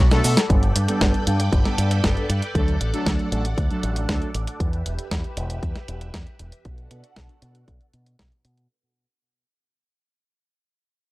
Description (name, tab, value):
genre	italo disco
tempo	117 BPM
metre	4/4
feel	straight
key	unclear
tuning	A4 = 440 Hz
part	phased string machine	sustained chords	0.0-8.7 s	D4 to B5	-33 LUFS	equal	ensemble chorus, phaser
part	fingered electric bass with an envelope filter	bass	0.0-8.7 s	E1 to B2	-23 LUFS	equal	none
part	analog synth brass	stabs	0.1-4.3 s	G2 to A4	-27 LUFS	right 1 dB	chorus, phaser
part	clean 12-bit digital drum machine	drums	0.1-8.7 s	cabasa, hi-hat, snare drum	-24 LUFS	equal	none
part	electronic kick drum	drums	0.5-8.3 s	none	-23 LUFS	equal	none
room	little or no reverb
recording	dry, gritty hardware recording, cassette tape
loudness	-20 LUFS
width	side -20 dB against mid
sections	0.5-8.7 A section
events	drum fill 0.0-0.5; fade-out 0.5-8.7; filter sweep on string machine 0.5-8.7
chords	0.5 Gadd9; 2.5 D; 4.6 Em; 6.7 Bm7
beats	| 0.50 1.01 1.52 2.04 | 2.55 3.06 3.58 4.09 | 4.60 5.11 5.63 6.14 | 6.65 7.16 7.68 8.19